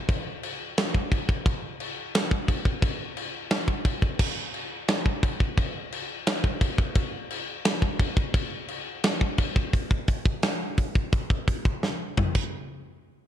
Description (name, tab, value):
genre	metal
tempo	174 BPM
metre	4/4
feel	straight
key	none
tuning	none
part	tight metal drum kit	drums	0.1-12.4 s	china cymbal, crash cymbal, hi-hat, kick drum, snare drum, toms	-24 LUFS	equal	none
room	light reverb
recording	none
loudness	-24 LUFS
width	side -11 dB against mid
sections	0.0-9.7 A section; 9.7-12.5 B section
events	drum fill 11.8-12.5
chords	none